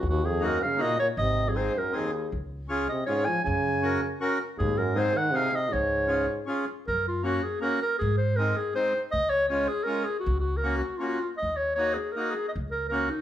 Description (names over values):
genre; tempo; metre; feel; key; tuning
alpine folk, alpine dance band; 158 BPM; 3/4; straight; Db major, F# major from 6.9 s; A4 = 440 Hz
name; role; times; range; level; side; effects
warm clarinet; melody; 0.0-13.2 s; D#4 to Ab5; -27 LUFS; equal; none
warm euphonium; second line; 0.0-6.5 s; Eb2 to F3; -30 LUFS; right 2 dB; none
upright bass; bass; 0.0-13.0 s; Ab1 to Ab2; -30 LUFS; equal; none
accordion; accompaniment; 0.4-13.1 s; G#3 to Bb4; -31 LUFS; left 1 dB; none
room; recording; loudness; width
moderate large studio reverb, RT60 0.9 s; band playing live in one room; -25 LUFS; side -11 dB against mid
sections
0.0-6.9 A section; 6.9-13.2 B section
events
none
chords
0.0 Ebm; 1.2 Ab; 2.3 Db; 3.5 Gb; 4.6 Ab; 5.7 Db; 6.9 F#; 8.0 G#; 9.1 C#; 10.3 F#/C#; 11.4 D#m; 12.5 F#/C#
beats
| 0.03 0.40 0.78 | 1.17 1.55 1.93 | 2.31 2.70 3.08 | 3.46 3.84 4.21 | 4.58 4.96 5.34 | 5.71 6.09 6.47 | 6.86 7.24 7.62 | 8.00 8.38 8.76 | 9.13 9.50 9.88 | 10.26 10.64 11.02 | 11.40 11.79 12.16 | 12.54 12.92